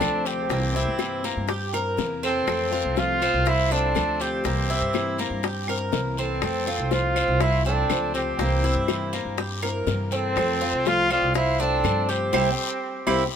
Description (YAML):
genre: latin, Cuban son and guajira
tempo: 122 BPM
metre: 4/4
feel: straight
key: F major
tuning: A4 = 440 Hz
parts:
  - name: warm trumpet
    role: melody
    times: 0.0-13.4 s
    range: C4 to F4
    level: -26 LUFS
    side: equal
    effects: none
  - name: bright wooden flute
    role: second line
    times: 0.0-13.4 s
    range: F4 to D5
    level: -33 LUFS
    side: right 4 dB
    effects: none
  - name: picked steel-string acoustic guitar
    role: accompaniment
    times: 0.0-13.2 s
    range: C3 to F4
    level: -30 LUFS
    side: left 5 dB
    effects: none
  - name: Cuban tres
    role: arpeggios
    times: 0.0-13.2 s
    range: Bb3 to Bb4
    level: -29 LUFS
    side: right 3 dB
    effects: none
  - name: upright bass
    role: bass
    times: 0.0-13.3 s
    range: C2 to G2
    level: -28 LUFS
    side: equal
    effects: none
  - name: bongos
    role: percussion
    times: 0.0-13.2 s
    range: none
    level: -30 LUFS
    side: left 10 dB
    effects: none
  - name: claves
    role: percussion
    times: 0.0-13.2 s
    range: none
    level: -33 LUFS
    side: right 2 dB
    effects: none
  - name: guiro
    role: percussion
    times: 0.0-13.2 s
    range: none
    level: -36 LUFS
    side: left 7 dB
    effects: none
room: light reverb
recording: minimal, uncompressed stereo recording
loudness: -21 LUFS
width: side -8 dB against mid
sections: 0.0-13.4 A section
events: band accent 12.3-13.4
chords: 0.0 F; 0.5 C7; 2.5 F; 4.5 C7; 6.4 F; 8.4 C7; 10.4 F; 12.3 C7